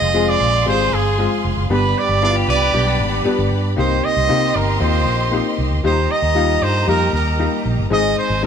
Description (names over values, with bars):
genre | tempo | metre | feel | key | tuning
soul | 116 BPM | 4/4 | straight | C minor | A4 = 440 Hz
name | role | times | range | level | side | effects
clear trumpet | melody | 0.0-8.4 s | Ab4 to Eb5 | -20 LUFS | right 2 dB | tape echo
bright studio string section | second line | 0.0-8.5 s | Eb4 to C6 | -24 LUFS | right 1 dB | none
bright upright piano | accompaniment | 0.0-8.5 s | G3 to Ab4 | -21 LUFS | left 4 dB | none
mellow tonewheel organ | sustained chords | 0.0-8.5 s | F3 to Eb4 | -29 LUFS | right 2 dB | none
vintage muted fingered electric bass | bass | 0.0-8.5 s | F1 to C3 | -20 LUFS | right 1 dB | none
clean electric guitar | riff | 2.2-3.6 s | B3 to B4 | -25 LUFS | left 4 dB | vibrato effect
room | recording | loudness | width
moderate large studio reverb, RT60 1.1 s | band playing live in one room | -15 LUFS | side -7 dB against mid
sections
0.0-8.5 A section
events
none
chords
0.0 Fm; 1.7 G; 3.8 Cm7; 5.8 Eb; 7.9 Ab